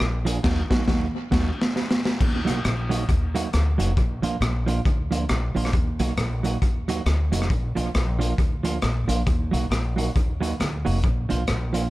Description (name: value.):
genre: ska.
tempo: 136 BPM.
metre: 4/4.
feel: swing 60% on 8ths.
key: Eb harmonic minor.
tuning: A4 = 442 Hz.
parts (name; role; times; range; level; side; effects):
upright bass; bass; 0.0-11.9 s; F1 to Eb2; -25 LUFS; equal; none.
crunchy breakbeat drum kit; drums; 0.0-11.8 s; crash cymbal, hi-hat, kick drum, rim click, snare drum; -24 LUFS; equal; tape echo.
clean electric guitar; accompaniment; 0.3-11.9 s; F3 to Ab4; -28 LUFS; right 4 dB; spring reverb.
room: studio reverb.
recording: dark, warm production.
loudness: -21 LUFS.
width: side -18 dB against mid.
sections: 0.0-2.2 A section; 2.2-11.9 B section.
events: band accent 0.4-2.2; drum fill 1.3-2.2.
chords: 0.4 Ebm; 4.0 Bb; 5.7 Ebm; 7.5 Bb; 9.3 Ebm; 11.0 Bb.